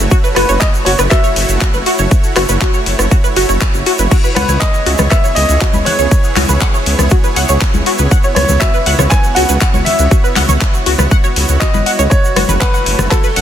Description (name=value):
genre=progressive house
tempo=120 BPM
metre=4/4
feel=straight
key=F# dorian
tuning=A4 = 440 Hz
part: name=supersaw pad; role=sustained chords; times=0.0-13.4 s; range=A3 to C#5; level=-20 LUFS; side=right 2 dB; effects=sidechain pumping
part: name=dark detuned saw bass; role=bass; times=0.0-13.4 s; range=F#1 to C#2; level=-14 LUFS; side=equal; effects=sidechain pumping
part: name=tight sequenced synth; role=arpeggios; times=0.1-13.4 s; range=F#4 to F#5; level=-18 LUFS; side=equal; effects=chorus, vintage 12-bit sampler grit, sidechain pumping, tape echo
part: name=deep house drum kit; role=drums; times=0.1-13.4 s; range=crash cymbal, handclaps, hi-hat, rim click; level=-18 LUFS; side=left 1 dB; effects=overdrive, sidechain pumping on hats, sidechain pumping on cymbals
part: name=electronic kick drum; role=drums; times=0.1-13.2 s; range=none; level=-12 LUFS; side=equal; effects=none
part: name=tube shaker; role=percussion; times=0.1-13.3 s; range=none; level=-25 LUFS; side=right 2 dB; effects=none
part: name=bright grand piano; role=melody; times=0.3-13.4 s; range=A4 to G#5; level=-18 LUFS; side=equal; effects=tape echo
part: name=congas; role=percussion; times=4.4-13.1 s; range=none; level=-21 LUFS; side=left 5 dB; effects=sidechain pumping on perc
room=little or no reverb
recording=dense, heavily limited modern master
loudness=-10 LUFS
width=side -10 dB against mid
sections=0.0-13.4 A section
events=none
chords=0.0 F#m7; 4.1 C#m7; 12.1 F#m7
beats=| 0.11 0.61 1.11 1.61 | 2.11 2.61 3.11 3.61 | 4.11 4.61 5.11 5.61 | 6.11 6.61 7.11 7.61 | 8.11 8.61 9.11 9.61 | 10.11 10.61 11.11 11.61 | 12.11 12.61 13.11